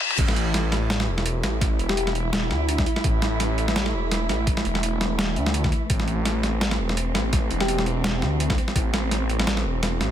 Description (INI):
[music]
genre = half-time drum and bass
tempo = 168 BPM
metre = 4/4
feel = swing 56% on 16ths, half-time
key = A minor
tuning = A4 = 440 Hz
[part]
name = boom bap sampler-style drum kit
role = drums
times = 0.0-10.1 s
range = crash cymbal, hi-hat, snare drum, toms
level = -26 LUFS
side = equal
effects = overdrive, high-pass filter on snare, high-pass filter on hats, high-pass filter on toms, high-pass filter on cymbals, high-pass filter on room
[part]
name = dark studio cello section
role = sustained chords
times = 0.2-10.1 s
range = E3 to E4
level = -29 LUFS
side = right 2 dB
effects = vintage 12-bit sampler grit, sidechain pumping
[part]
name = phased detuned saw bass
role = bass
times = 0.2-10.1 s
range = E1 to D2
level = -25 LUFS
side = equal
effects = phaser, tube saturation, high-pass filter
[part]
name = electronic kick drum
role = drums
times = 0.2-8.8 s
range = none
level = -23 LUFS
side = equal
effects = overdrive
[part]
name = bell-like FM electric piano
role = melody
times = 1.9-3.0, 7.6-7.8 s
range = E4 to G4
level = -31 LUFS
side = left 2 dB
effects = chorus, phaser, dub echo
[sound]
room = light reverb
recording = high-pass filter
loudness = -21 LUFS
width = side -10 dB against mid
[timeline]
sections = 0.2-10.1 A section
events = break 0.0; drum fill 0.0; drop 0.2-10.1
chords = 0.2 A5